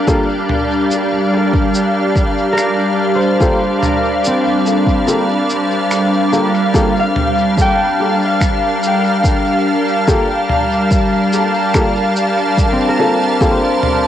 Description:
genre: ambient dub.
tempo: 72 BPM.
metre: 4/4.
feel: straight.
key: G minor.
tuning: A4 = 436 Hz.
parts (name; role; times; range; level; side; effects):
soft additive organ-like pad; sustained chords; 0.0-14.1 s; G3 to A5; -14 LUFS; equal; ensemble chorus, built-in reverb, cassette tape.
clear upright piano; stabs; 0.1-13.6 s; Bb3 to A4; -21 LUFS; left 2 dB; cassette tape, dub echo, plate reverb.
electronic kick drum; drums; 0.1-13.6 s; none; -16 LUFS; equal; overdrive, cassette tape.
lo-fi sampler-style drum kit; drums; 0.1-14.0 s; cabasa, finger snaps, toms; -24 LUFS; equal; cassette tape, dub echo.
concert harp; arpeggios; 2.5-14.1 s; C4 to G5; -20 LUFS; equal; cassette tape, dub echo.
room: moderate studio reverb, RT60 0.6 s.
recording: home recording on cassette.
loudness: -12 LUFS.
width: side -10 dB against mid.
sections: 0.0-6.7 A section; 6.7-14.1 B section.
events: filter sweep on upright piano 0.0-6.7; kick drops out 5.1-6.7; band accent 5.9-6.3.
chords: 0.0 Gm9.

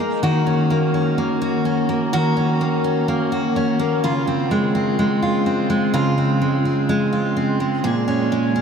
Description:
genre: pop.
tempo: 63 BPM.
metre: 4/4.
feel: straight.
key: unclear.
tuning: A4 = 440 Hz.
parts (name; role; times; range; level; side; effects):
picked steel-string acoustic guitar; solo; 0.0-8.6 s; Bb2 to Ab4; -17 LUFS; equal; tape echo.
room: wet huge ambient reverb, RT60 8.6 s.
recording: dreamy mix soaked in reverb.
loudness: -17 LUFS.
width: side -6 dB against mid.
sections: 0.0-8.6 A section.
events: none.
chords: 0.2 Ebm7; 4.0 Dbmaj7; 7.8 Bbm7.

